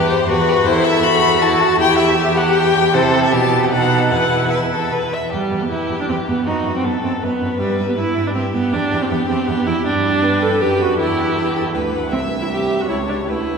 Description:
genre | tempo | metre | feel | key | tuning
quick classical-period movement for string quartet | 158 BPM | 3/4 | rubato | E minor, G major from 9.8 s | A4 = 440 Hz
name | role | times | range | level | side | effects
rich violin | melody | 0.0-13.6 s | B4 to B5 | -21 LUFS | left 5 dB | none
clear violin | second line | 0.0-13.6 s | E4 to E5 | -21 LUFS | left 2 dB | none
rich cello | bass | 0.0-13.6 s | C2 to C3 | -21 LUFS | right 3 dB | none
warm viola | accompaniment | 0.1-13.6 s | G3 to A4 | -19 LUFS | right 2 dB | none
room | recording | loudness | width
wet cathedral reverb, RT60 4.5 s | recorded in a church or concert hall | -15 LUFS | side -5 dB against mid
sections
0.0-5.3 A section; 5.3-13.6 A section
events
none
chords
0.0 Em; 0.7 A5/E; 1.8 Em; 2.9 C; 3.3 Em/B; 3.7 B7; 4.1 E5; 5.3 Em; 6.5 B5/F#; 7.6 Em/G; 8.7 Em; 9.8 G; 11.0 Em; 12.1 C; 12.9 A/C#

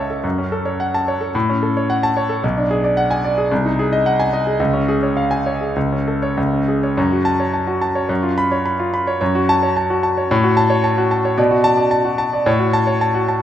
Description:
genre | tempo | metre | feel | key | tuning
classical, virtuoso piano study | 109 BPM | 2/4 | rubato | F# minor | A4 = 442 Hz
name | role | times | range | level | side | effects
clear concert grand piano | solo | 0.0-13.4 s | B1 to B5 | -15 LUFS | equal | none
room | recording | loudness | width
moderate recital hall reverb, RT60 1.5 s | minimal, uncompressed stereo recording | -15 LUFS | side -11 dB against mid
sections
0.0-7.0 A section; 7.0-13.4 B section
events
none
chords
0.2 F#m; 1.3 F#m/A; 2.4 G#m7b5/B; 3.5 G#7/B#; 4.6 C#; 5.8 A/C#; 6.4 C#5; 7.0 F#m; 8.1 C#7/F#; 9.2 F#m; 10.3 F#m/A; 11.4 Bm7; 12.5 F#m/A

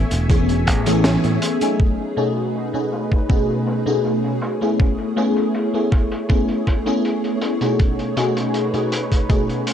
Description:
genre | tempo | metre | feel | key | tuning
vaporwave | 80 BPM | 4/4 | straight | unclear | A4 = 441 Hz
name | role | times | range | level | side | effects
soft string machine | sustained chords | 0.0-9.7 s | A3 to C#6 | -26 LUFS | equal | ensemble chorus
fingered electric bass | bass | 0.0-1.4 s | E1 to A2 | -20 LUFS | equal | none
crunchy breakbeat drum kit | drums | 0.1-9.7 s | cabasa, hi-hat, snare drum | -28 LUFS | equal | low-pass filter on hats, low-pass filter on snare, low-pass filter on perc, low-pass filter on room
FM electric piano with soft pad layer | accompaniment | 0.3-9.7 s | B2 to G#4 | -20 LUFS | left 1 dB | phaser, analog chorus, analog delay
electronic kick drum | drums | 0.3-9.5 s | none | -18 LUFS | equal | none
room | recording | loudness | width
moderate concert hall reverb, RT60 2.2 s | cassette tape | -17 LUFS | side -9 dB against mid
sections
0.0-1.8 A section; 1.8-9.7 B section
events
band accent 1.0-1.4; filter sweep on drum 1.8-9.7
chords
0.0 Amaj7; 1.8 B13; 4.4 Amaj7; 7.8 B13

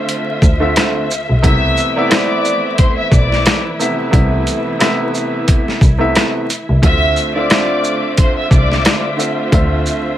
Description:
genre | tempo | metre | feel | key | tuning
hip hop, boom-bap hip-hop | 89 BPM | 4/4 | swing 57% on 16ths | A minor | A4 = 439 Hz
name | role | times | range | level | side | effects
warm upright piano | accompaniment | 0.0-10.2 s | C3 to E5 | -18 LUFS | right 1 dB | high-pass filter, low-pass filter
warm studio string section | sustained chords | 0.0-10.2 s | D3 to E5 | -23 LUFS | left 1 dB | high-pass filter, low-pass filter
boom bap sampler-style drum kit | drums | 0.1-10.0 s | hi-hat, kick drum, rim click, shaker, snare drum | -14 LUFS | equal | none
warm double bass | bass | 0.4-9.8 s | B1 to D2 | -15 LUFS | equal | none
dark studio violin section | melody | 1.4-9.0 s | C5 to E6 | -18 LUFS | left 2 dB | high-pass filter, low-pass filter, ping-pong delay
room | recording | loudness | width
light reverb | vinyl crackle | -12 LUFS | side -12 dB against mid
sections
0.0-10.2 A section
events
none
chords
0.0 Dm7; 1.4 Amadd9; 6.8 Dm7

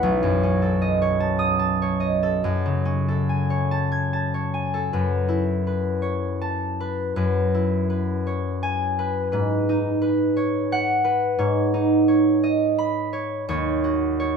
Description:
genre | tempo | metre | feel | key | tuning
classical, solo harp piece | 68-88 BPM | 3/4 | rubato | F# dorian | A4 = 439 Hz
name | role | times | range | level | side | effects
concert harp | solo | 0.0-14.4 s | B1 to G#6 | -20 LUFS | equal | none
room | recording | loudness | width
light reverb | close, detailed microphones | -20 LUFS | side -6 dB against mid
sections
0.0-4.9 A section; 4.9-14.4 A section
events
none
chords
0.0 B9; 2.4 F#madd9; 4.9 F#m11; 7.2 C#m7/F#; 9.3 G#m7; 13.5 D#m7

